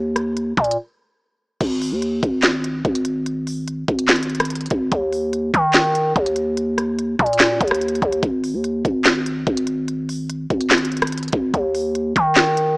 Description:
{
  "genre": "hip hop, trap",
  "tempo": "145 BPM",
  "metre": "4/4",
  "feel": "half-time",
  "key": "unclear",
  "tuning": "A4 = 440 Hz",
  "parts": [
    { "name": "growling 808-style bass", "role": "bass", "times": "0.0-12.8 s", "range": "Ab1 to Eb3", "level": "-19 LUFS", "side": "equal", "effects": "none" },
    { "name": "trap drum kit", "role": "drums", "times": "0.2-12.7 s", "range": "crash cymbal, handclaps, hi-hat, kick drum, rim click, snare drum", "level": "-19 LUFS", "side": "equal", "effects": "none" }
  ],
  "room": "digital ambience",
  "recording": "small speaker sound",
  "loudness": "-17 LUFS",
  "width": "side -30 dB against mid",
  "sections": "0.0-1.6 A section; 1.6-12.8 B section",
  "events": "break 0.8-1.6",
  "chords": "none"
}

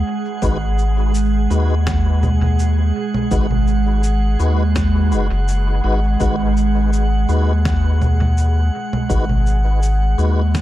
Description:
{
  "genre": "ambient dub",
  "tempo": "83 BPM",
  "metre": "4/4",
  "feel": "swing 53% on 16ths",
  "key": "G# minor",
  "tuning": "A4 = 441 Hz",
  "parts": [
    { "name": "soft additive organ-like pad", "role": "sustained chords", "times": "0.0-10.6 s", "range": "G#3", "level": "-23 LUFS", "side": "right 4 dB", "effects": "ensemble chorus, built-in reverb" },
    { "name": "round analog bass", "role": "bass", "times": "0.0-10.6 s", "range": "F#1 to D#2", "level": "-16 LUFS", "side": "equal", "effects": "none" },
    { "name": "drifting glass-harmonics texture", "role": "texture", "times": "0.0-10.6 s", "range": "F#5", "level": "-29 LUFS", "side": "right 1 dB", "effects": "chorus, built-in reverb" },
    { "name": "mellow tonewheel organ", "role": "stabs", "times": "0.4-10.4 s", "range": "G#3 to B4", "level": "-26 LUFS", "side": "left 2 dB", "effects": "chorus vibrato, fast rotary speaker, dub echo" },
    { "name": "electronic kick drum", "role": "drums", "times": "0.4-10.6 s", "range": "none", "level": "-23 LUFS", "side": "equal", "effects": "overdrive" },
    { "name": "electronic shaker, snare drum and congas", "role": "drums", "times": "0.4-10.6 s", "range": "none", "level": "-26 LUFS", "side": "right 1 dB", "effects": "overdrive, dub echo" }
  ],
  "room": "digital ambience",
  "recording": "dark, warm production",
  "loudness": "-15 LUFS",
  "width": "side -14 dB against mid",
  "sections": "0.0-10.6 A section",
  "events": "none",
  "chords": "0.0 G#m7"
}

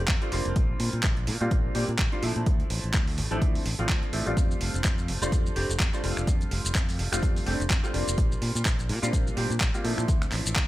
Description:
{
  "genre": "filtered disco house",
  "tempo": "126 BPM",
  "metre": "4/4",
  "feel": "swing 56% on 16ths",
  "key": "F major",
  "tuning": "A4 = 439 Hz",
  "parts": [
    { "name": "modern bright fingered electric bass", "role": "bass", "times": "0.0-10.7 s", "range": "F1 to Bb2", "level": "-30 LUFS", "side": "equal", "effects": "sidechain pumping, low-pass filter" },
    { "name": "dusty soul sampler-style drum kit", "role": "drums", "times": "0.1-10.7 s", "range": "finger snaps, handclaps, hi-hat, shaker", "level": "-31 LUFS", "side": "right 1 dB", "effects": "overdrive, sidechain pumping on hats, small room ambience, sidechain pumping on perc" },
    { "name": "electronic kick drum", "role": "drums", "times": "0.1-10.7 s", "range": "none", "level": "-26 LUFS", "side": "equal", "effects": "small room ambience" },
    { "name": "bright baby grand piano", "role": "accompaniment", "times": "0.2-10.7 s", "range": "F3 to G4", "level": "-32 LUFS", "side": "equal", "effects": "phaser, sidechain pumping, low-pass filter" }
  ],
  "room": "little or no reverb",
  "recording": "none",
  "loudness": "-24 LUFS",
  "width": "side -16 dB against mid",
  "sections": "0.0-10.7 A section",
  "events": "none",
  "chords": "0.0 F69; 0.6 Bb69; 2.5 Dm9; 4.4 F69; 8.2 Bb69; 10.1 Dm9"
}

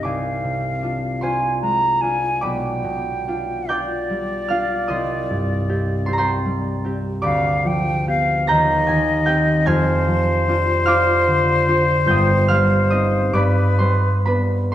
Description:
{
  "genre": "classical, romantic duo for flute and harp",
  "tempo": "50 BPM (dotted quarters)",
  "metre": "6/8",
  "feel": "uneven beats, rubato",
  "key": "C minor",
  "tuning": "A4 = 439 Hz",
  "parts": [
    { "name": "silver concert flute", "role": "melody", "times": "0.0-14.4 s", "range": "B4 to Bb5", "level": "-21 LUFS", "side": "left 1 dB", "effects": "none" },
    { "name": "concert harp", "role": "accompaniment", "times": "0.0-14.7 s", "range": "F1 to Bb6", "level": "-19 LUFS", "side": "equal", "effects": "none" }
  ],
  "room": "wet recital hall reverb, RT60 1.6 s",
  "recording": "none",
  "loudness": "-17 LUFS",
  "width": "side -12 dB against mid",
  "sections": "0.0-14.7 A section",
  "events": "none",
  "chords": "0.1 Dm7b5/C; 2.4 G7/B; 4.9 Cm; 7.3 G7/D; 8.5 Cm/Eb; 9.7 Ddim/F; 12.1 Cm/G; 13.4 G"
}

